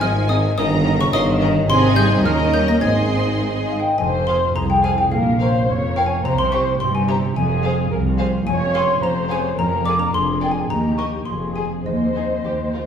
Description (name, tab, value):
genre	cinematic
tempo	107 BPM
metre	2/4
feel	straight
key	Ab major, F minor from 4.0 s, Ab major from 8.5 s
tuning	A4 = 440 Hz
part	warm symphonic violin section	melody	0.0-12.8 s	Bb4 to C6	-31 LUFS	left 3 dB	none
part	xylophone with rubber mallets	melody	0.0-12.7 s	Eb5 to Bb6	-25 LUFS	left 2 dB	none
part	warm studio violin section	second line	0.0-12.8 s	Eb4 to Eb5	-27 LUFS	equal	none
part	dark studio viola section	accompaniment	0.0-12.7 s	C4 to Db5	-25 LUFS	right 2 dB	none
part	concert harp	arpeggios	0.0-12.9 s	F2 to Bb5	-25 LUFS	left 2 dB	none
part	clear tuba	bass	0.0-3.8 s	G1 to Eb2	-25 LUFS	right 2 dB	none
part	dark studio double bass section	bass	0.0-12.9 s	F1 to Eb2	-24 LUFS	right 2 dB	none
part	rich studio cello section	bass	0.0-12.9 s	C2 to Bb3	-24 LUFS	right 1 dB	none
part	mellow hollow silver concert flute	second line	3.7-12.7 s	Eb5 to D6	-24 LUFS	left 2 dB	none
room	wet stone room reverb, RT60 1.3 s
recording	heard from further back in the room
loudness	-16 LUFS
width	side -8 dB against mid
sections	0.0-4.0 A section; 4.0-12.9 B section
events	none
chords	0.0 Ab; 0.6 Eb7/G; 1.7 Ab; 2.3 Eb7; 2.8 Ab; 4.0 Fm; 5.1 Bbm; 6.2 C7; 7.4 Fm; 8.5 Db/F; 9.6 Bb7/F; 10.7 Eb; 11.3 Fm; 11.9 Ab/Eb